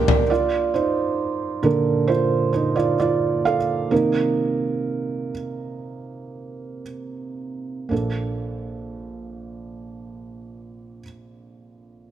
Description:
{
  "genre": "pop",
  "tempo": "56-68 BPM",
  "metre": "4/4",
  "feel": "straight",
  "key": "Bb major",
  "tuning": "A4 = 438 Hz",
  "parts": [
    { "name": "felt-muted upright piano", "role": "accompaniment", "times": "0.0-12.1 s", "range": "Bb1 to F5", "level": "-22 LUFS", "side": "right 4 dB", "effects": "none" },
    { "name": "fingerpicked steel-string acoustic guitar", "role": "arpeggios", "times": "0.0-0.8 s", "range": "F3 to G4", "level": "-34 LUFS", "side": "left 3 dB", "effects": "digital delay" }
  ],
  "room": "light reverb, studio reverb",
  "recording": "none",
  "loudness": "-20 LUFS",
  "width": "side -10 dB against mid",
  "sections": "0.3-7.9 A section; 7.9-12.1 B section",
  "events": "slowing down 0.3-7.9; felt piano solo 0.3-7.9",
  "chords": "0.3 Bbmaj7; 3.9 Cm7; 7.9 Bbmaj7",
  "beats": "| 0.30 1.19 2.08 2.99 | 3.92 4.87 5.85 6.86 | 7.92 8.99 10.07 11.14"
}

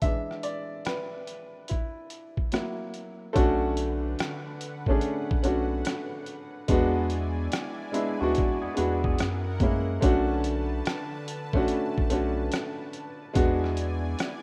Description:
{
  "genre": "lo-fi hip hop",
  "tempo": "72 BPM",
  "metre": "4/4",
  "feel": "swing 64% on 16ths",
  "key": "B dorian",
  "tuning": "A4 = 440 Hz",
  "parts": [
    { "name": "clear upright piano", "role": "accompaniment", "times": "0.0-14.4 s", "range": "E3 to E5", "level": "-31 LUFS", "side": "equal", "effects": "cassette tape" },
    { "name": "trip hop sampler-style drum kit", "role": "drums", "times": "0.0-14.4 s", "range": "hi-hat, kick drum, rim click", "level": "-31 LUFS", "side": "equal", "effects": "none" },
    { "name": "lush unison pad", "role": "sustained chords", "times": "3.4-14.4 s", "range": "D3 to A5", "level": "-42 LUFS", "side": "equal", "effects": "chorus" },
    { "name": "round analog bass", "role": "bass", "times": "3.4-14.2 s", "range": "A1 to F#2", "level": "-33 LUFS", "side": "equal", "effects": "none" },
    { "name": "electric guitar through a small old amp", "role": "second line", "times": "7.9-9.4 s", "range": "G#3 to B4", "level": "-40 LUFS", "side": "equal", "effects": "analog delay" }
  ],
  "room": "light reverb",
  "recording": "rough home demo mix",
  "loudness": "-28 LUFS",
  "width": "mono",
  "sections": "0.0-3.4 A section; 3.4-14.4 B section",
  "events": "upright piano solo 0.0-3.4",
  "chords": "0.0 E7; 2.5 F#7; 3.4 Bm7; 6.7 E7; 9.2 F#7; 10.0 Bm7; 13.4 E7",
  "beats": "| 0.02 0.86 1.69 2.52 | 3.36 4.19 5.02 5.86 | 6.69 7.52 8.36 9.19 | 10.02 10.86 11.69 12.52 | 13.36 14.19"
}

